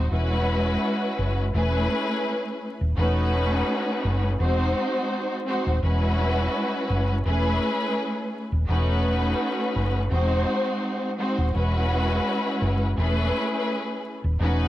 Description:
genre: hip hop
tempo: 84 BPM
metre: 4/4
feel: swing 54% on 16ths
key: E major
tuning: A4 = 440 Hz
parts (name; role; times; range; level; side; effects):
- warm studio string section; accompaniment; 0.0-14.7 s; G#3 to B#4; -24 LUFS; equal; cassette tape, high-pass filter, low-pass filter
- hollow-body short-scale fingered electric bass; bass; 0.0-14.7 s; D#1 to F#1; -23 LUFS; equal; none
room: light reverb, studio reverb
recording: vinyl crackle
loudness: -22 LUFS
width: side -14 dB against mid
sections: 0.0-14.7 A section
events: none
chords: 0.1 E6; 1.5 Amaj7/E; 3.0 B7/E; 4.4 G#7/E; 5.8 E6; 7.3 Amaj7/E; 8.7 B7/E; 10.1 G#7/E; 11.5 E6; 13.0 Amaj7/E

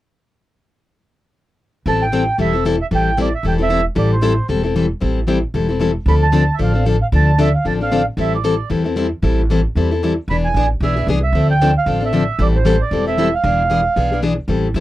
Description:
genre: acoustic string swing (jazz manouche)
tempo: 228 BPM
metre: 4/4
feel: swing 55% on 8ths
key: A minor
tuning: A4 = 440 Hz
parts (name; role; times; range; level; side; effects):
- mellow accordion; melody; 1.9-14.2 s; C5 to B5; -19 LUFS; right 4 dB; none
- picked plugged-in steel-string acoustic guitar; accompaniment; 1.9-14.8 s; D3 to A4; -18 LUFS; left 3 dB; none
- upright bass; bass; 1.9-14.8 s; E1 to A2; -18 LUFS; right 1 dB; none
room: little or no reverb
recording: dry, close 1970s-style studio recording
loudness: -14 LUFS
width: side -15 dB against mid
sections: 1.9-14.5 A section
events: none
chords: 1.9 Am7; 6.1 Dm7; 8.2 Am7; 10.3 E7; 11.3 Dm9; 12.4 Am7; 13.4 E7b9

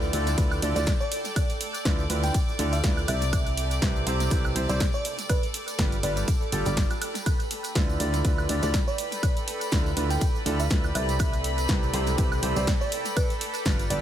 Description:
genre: piano house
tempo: 122 BPM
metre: 4/4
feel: swing 56% on 16ths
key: D dorian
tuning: A4 = 437 Hz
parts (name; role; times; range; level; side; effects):
- clear studio violin section; sustained chords; 0.0-14.0 s; B4 to D6; -36 LUFS; equal; sidechain pumping
- clear upright piano; riff; 0.0-14.0 s; C3 to D5; -31 LUFS; right 1 dB; sidechain pumping, analog delay
- solid FM bass; bass; 0.0-14.0 s; G1 to D2; -28 LUFS; equal; sidechain pumping
- punchy analog drum machine; drums; 0.0-14.0 s; cabasa, hi-hat, ride cymbal, snare drum, woodblock; -32 LUFS; right 1 dB; overdrive, studio reverb, analog delay
- tambourine; percussion; 0.0-13.9 s; none; -41 LUFS; right 3 dB; none
- granular cloud pad; texture; 0.0-14.0 s; A4 to B5; -35 LUFS; right 1 dB; built-in reverb, sidechain pumping
- electronic kick drum; drums; 0.4-13.8 s; none; -25 LUFS; equal; studio reverb
- bell-like FM electric piano; melody; 0.8-14.0 s; B4 to G5; -34 LUFS; right 1 dB; chorus, analog delay
room: little or no reverb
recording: echo-heavy mix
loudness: -23 LUFS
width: side -11 dB against mid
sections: 0.0-14.0 A section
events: none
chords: 0.0 Dm69; 3.1 Cmaj7; 5.3 G7; 7.3 Dm69; 11.0 Cmaj7; 13.2 G7

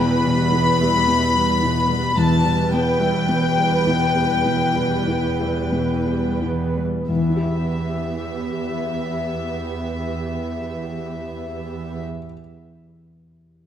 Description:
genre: cinematic, emotional film score for orchestra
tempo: 43-55 BPM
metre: 4/4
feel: rubato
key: E minor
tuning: A4 = 440 Hz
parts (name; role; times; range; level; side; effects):
- warm symphonic violin section; melody; 0.0-12.0 s; E5 to B5; -24 LUFS; left 4 dB; none
- dark symphonic viola section; accompaniment; 0.0-12.0 s; E3 to B4; -26 LUFS; right 4 dB; none
- felt-muted upright piano; accompaniment; 0.0-13.7 s; E2 to E5; -24 LUFS; left 1 dB; none
- concert harp; arpeggios; 0.0-12.4 s; E2 to E5; -28 LUFS; left 5 dB; none
- warm chamber cello section; bass; 0.0-12.0 s; E2; -26 LUFS; right 3 dB; none
room: wet scoring stage reverb, RT60 1.8 s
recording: none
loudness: -18 LUFS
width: side -9 dB against mid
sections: 0.0-7.1 A section; 7.1-12.3 B section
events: slowing down 0.0-7.1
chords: 0.0 Em

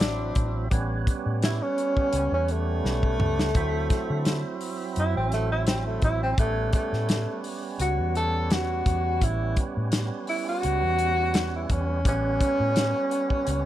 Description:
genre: straight-eighth soul blues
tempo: 85 BPM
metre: 4/4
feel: swing 53% on 16ths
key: A mixolydian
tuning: A4 = 440 Hz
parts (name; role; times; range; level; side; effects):
- mellow tenor saxophone; melody; 0.0-13.7 s; A3 to A4; -27 LUFS; equal; none
- percussive tonewheel organ; accompaniment; 0.0-13.7 s; F#3 to E4; -32 LUFS; right 5 dB; slow rotary speaker, overdrive
- vintage muted fingered electric bass; bass; 0.0-13.6 s; A1 to D3; -28 LUFS; equal; none
- warm soul drum kit; drums; 0.0-13.6 s; hi-hat, kick drum, snare drum, toms; -26 LUFS; equal; none
room: small room ambience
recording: none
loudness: -23 LUFS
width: side -13 dB against mid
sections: 0.0-13.7 A section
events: tenor saxophone solo 0.0-13.7; drum fill 2.8-3.5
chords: 0.0 D9; 0.7 A9; 3.5 D9; 6.4 A9

